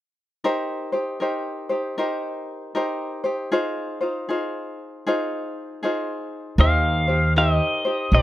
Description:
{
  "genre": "Hawaiian",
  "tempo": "78 BPM",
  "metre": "4/4",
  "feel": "swing 64% on 8ths",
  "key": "Eb major",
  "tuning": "A4 = 443 Hz",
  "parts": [
    { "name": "tenor ukulele", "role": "accompaniment", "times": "0.4-8.2 s", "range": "Eb4 to C5", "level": "-24 LUFS", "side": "left 1 dB", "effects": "plate reverb" },
    { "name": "pedal steel guitar", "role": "melody", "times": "6.6-8.2 s", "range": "Bb4 to F5", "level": "-21 LUFS", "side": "equal", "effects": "plate reverb" },
    { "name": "upright bass", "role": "bass", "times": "6.6-8.2 s", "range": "Bb1 to Eb2", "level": "-18 LUFS", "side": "equal", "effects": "none" }
  ],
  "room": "moderate studio reverb, RT60 0.5 s",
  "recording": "none",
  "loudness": "-21 LUFS",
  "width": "side -14 dB against mid",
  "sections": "0.4-6.6 A section; 6.6-8.2 B section",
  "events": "none",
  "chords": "0.4 Eb6; 3.5 Fm7; 6.6 Eb6"
}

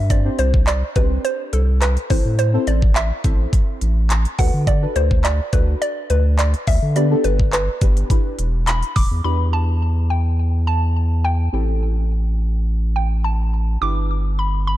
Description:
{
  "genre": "dance-pop",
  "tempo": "105 BPM",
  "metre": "4/4",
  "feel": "straight",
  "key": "E minor",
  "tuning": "A4 = 440 Hz",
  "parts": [
    { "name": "hollow square pluck", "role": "melody", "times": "0.0-14.8 s", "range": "A4 to D6", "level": "-25 LUFS", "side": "equal", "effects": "chorus, ping-pong delay" },
    { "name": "saturated sub bass", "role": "bass", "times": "0.0-14.8 s", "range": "E1 to D3", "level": "-18 LUFS", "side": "equal", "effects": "sidechain pumping" },
    { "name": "deep mellow chord stab", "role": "accompaniment", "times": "0.1-14.8 s", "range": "B3 to C5", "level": "-26 LUFS", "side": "left 1 dB", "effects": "chorus, phaser, sidechain pumping" },
    { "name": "pop drum kit", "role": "drums", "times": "0.1-9.1 s", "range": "handclaps, hi-hat, kick drum", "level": "-19 LUFS", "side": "equal", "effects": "none" }
  ],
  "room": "little or no reverb",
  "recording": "dark, warm production",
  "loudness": "-16 LUFS",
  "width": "side -14 dB against mid",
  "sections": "0.0-9.2 A section; 9.2-14.8 B section",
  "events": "none",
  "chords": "0.1 Csus2; 2.1 Am; 4.4 D6; 7.0 G; 8.1 Em7; 11.5 Am7; 13.8 Em7/G"
}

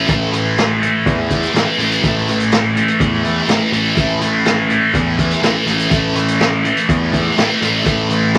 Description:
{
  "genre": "psychedelic rock",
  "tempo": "124 BPM",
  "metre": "4/4",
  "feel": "straight",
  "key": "unclear",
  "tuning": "A4 = 440 Hz",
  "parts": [
    { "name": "thick fuzz guitar", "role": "riff", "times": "0.0-8.4 s", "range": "A2 to A3", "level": "-18 LUFS", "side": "equal", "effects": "distortion, phaser" },
    { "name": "fuzz picked electric bass", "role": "bass", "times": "0.0-8.4 s", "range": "A1 to E2", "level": "-22 LUFS", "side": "equal", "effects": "overdrive" },
    { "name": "vintage drum kit", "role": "drums", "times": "0.1-8.4 s", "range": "hi-hat, kick drum, snare drum", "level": "-21 LUFS", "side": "equal", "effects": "none" }
  ],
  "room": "moderate club reverb, RT60 0.5 s",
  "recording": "vinyl crackle",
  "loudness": "-15 LUFS",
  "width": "mono",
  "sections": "0.0-8.4 A section",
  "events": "none",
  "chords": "0.0 A5"
}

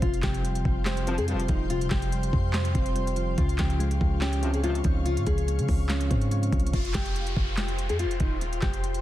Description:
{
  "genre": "hip hop, trap",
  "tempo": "143 BPM",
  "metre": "4/4",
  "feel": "half-time",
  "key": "F minor",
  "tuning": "A4 = 440 Hz",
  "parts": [
    { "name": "nylon-string guitar", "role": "melody", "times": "0.0-9.0 s", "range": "Eb4 to Ab4", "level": "-34 LUFS", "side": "left 4 dB", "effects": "tape echo" },
    { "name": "soft electric-piano-like synth keys", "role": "accompaniment", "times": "0.0-6.8 s", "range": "C3 to C5", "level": "-31 LUFS", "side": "right 1 dB", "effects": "chorus, tremolo" },
    { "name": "ethereal airy pad", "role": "sustained chords", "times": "0.0-9.0 s", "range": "F4 to Db6", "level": "-37 LUFS", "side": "left 3 dB", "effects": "ensemble chorus, built-in reverb" },
    { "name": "warm 808-style bass", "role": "bass", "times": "0.0-9.0 s", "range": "Eb1 to Db3", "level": "-28 LUFS", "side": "equal", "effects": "none" },
    { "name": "trap drum kit", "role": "drums", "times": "0.0-9.0 s", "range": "handclaps, hi-hat, kick drum, snare drum", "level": "-29 LUFS", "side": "equal", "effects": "overdrive" },
    { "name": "mellow brass ensemble", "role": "stabs", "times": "1.1-1.4, 4.4-4.8 s", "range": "C2 to F3", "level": "-36 LUFS", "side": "left 3 dB", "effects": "none" },
    { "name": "downlifter", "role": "sound effects", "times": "6.7-9.0 s", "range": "none", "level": "-37 LUFS", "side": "equal", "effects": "none" }
  ],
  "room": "digital ambience",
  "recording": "dense, heavily limited modern master, vinyl crackle",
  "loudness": "-24 LUFS",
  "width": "side -14 dB against mid",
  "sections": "0.0-6.7 A section; 6.7-9.0 B section",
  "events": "none",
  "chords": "0.0 Fsus2; 3.4 Dbmaj7; 6.7 Fsus2"
}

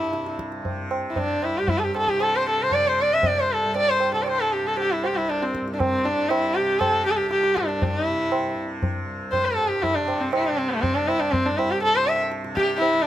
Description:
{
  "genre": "indian classical, Hindustani",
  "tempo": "118 BPM",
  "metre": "4/4",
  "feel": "straight",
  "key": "C raga bhupali",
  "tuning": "A4 = 440 Hz",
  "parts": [
    { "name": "rich sarangi", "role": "melody", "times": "0.0-13.1 s", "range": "A3 to E5", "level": "-21 LUFS", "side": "equal", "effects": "none" },
    { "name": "tanpura", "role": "drone", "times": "0.0-13.1 s", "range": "C2 to C3", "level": "-32 LUFS", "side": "right 1 dB", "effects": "none" },
    { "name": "tabla", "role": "percussion", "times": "0.1-13.0 s", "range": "none", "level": "-28 LUFS", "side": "right 1 dB", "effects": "none" }
  ],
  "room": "light reverb",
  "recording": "close, detailed microphones",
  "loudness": "-20 LUFS",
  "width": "side -12 dB against mid",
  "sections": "0.0-13.1 A section",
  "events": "speeding up 0.0-13.1",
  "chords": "none"
}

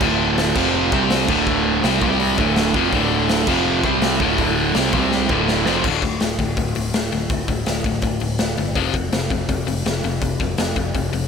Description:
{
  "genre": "punk rock",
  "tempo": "165 BPM",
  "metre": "4/4",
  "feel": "straight",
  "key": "D minor",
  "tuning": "A4 = 441 Hz",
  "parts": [
    { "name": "crunchy overdriven guitar", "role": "riff", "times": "0.0-11.3 s", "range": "D2 to C4", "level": "-21 LUFS", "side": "left 12 dB", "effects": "none" },
    { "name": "sludgy distorted guitar", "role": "riff", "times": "0.0-5.8 s", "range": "D2 to C4", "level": "-20 LUFS", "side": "right 13 dB", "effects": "overdrive" },
    { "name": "growling picked electric bass", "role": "bass", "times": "0.0-11.3 s", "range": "D1 to C2", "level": "-26 LUFS", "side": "equal", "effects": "overdrive" },
    { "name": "raw garage drum kit", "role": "drums", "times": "0.0-11.2 s", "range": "crash cymbal, hi-hat, kick drum, snare drum", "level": "-22 LUFS", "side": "equal", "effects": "none" }
  ],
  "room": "light reverb",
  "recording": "none",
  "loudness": "-17 LUFS",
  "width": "side -6 dB against mid",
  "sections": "0.0-5.8 A section; 5.8-11.3 B section",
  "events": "drum fill 5.1-5.8",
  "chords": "0.0 D5; 0.6 F5; 0.9 C5; 1.3 D5; 2.0 C5; 2.4 Dm; 3.5 F5; 3.8 C5; 4.2 D5; 4.9 C5; 5.3 Dm; 5.8 D5; 8.8 F5"
}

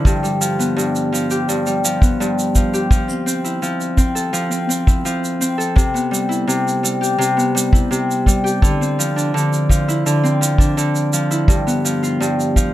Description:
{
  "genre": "folktronica",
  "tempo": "84 BPM",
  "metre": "4/4",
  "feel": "straight",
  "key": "F lydian",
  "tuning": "A4 = 439 Hz",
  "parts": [
    { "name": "Celtic harp", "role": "arpeggios", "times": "0.0-12.7 s", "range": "G2 to A4", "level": "-17 LUFS", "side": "equal", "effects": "digital delay" },
    { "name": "kick drum", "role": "drums", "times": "0.1-12.7 s", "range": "none", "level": "-14 LUFS", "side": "equal", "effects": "none" },
    { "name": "shaker", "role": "drums", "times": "0.1-12.7 s", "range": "none", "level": "-24 LUFS", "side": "right 4 dB", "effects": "none" }
  ],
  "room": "little or no reverb",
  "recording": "none",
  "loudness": "-15 LUFS",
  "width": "side -14 dB against mid",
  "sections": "0.0-12.7 A section",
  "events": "none",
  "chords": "0.1 G7; 2.9 Fmaj7; 5.8 Cmaj7; 8.6 Dm9; 11.5 G7"
}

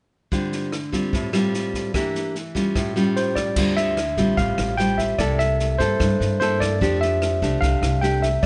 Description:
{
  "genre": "bossa nova",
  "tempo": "148 BPM",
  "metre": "4/4",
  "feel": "straight",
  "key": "D minor",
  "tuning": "A4 = 440 Hz",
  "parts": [
    { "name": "nylon-string guitar", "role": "accompaniment", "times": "0.3-8.5 s", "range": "G2 to A4", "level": "-25 LUFS", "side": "equal", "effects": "none" },
    { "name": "open jazz drum kit", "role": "drums", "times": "0.3-8.5 s", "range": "crash cymbal, kick drum, rim click, snare drum", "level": "-30 LUFS", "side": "equal", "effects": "none" },
    { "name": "bright tine electric piano", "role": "melody", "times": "3.2-8.5 s", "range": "C5 to G5", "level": "-26 LUFS", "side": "equal", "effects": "overdrive" },
    { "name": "upright bass", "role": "bass", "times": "3.6-8.5 s", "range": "A1 to G2", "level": "-26 LUFS", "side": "equal", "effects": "none" }
  ],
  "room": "light reverb",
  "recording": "nothing above 10.5 kHz",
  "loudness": "-22 LUFS",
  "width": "mono",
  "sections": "0.3-3.6 A section; 3.6-8.5 B section",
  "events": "none",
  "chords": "0.3 Dm7; 1.9 Em7b5; 2.8 Aaug7; 3.6 Dm11; 5.2 C6; 6.8 F69"
}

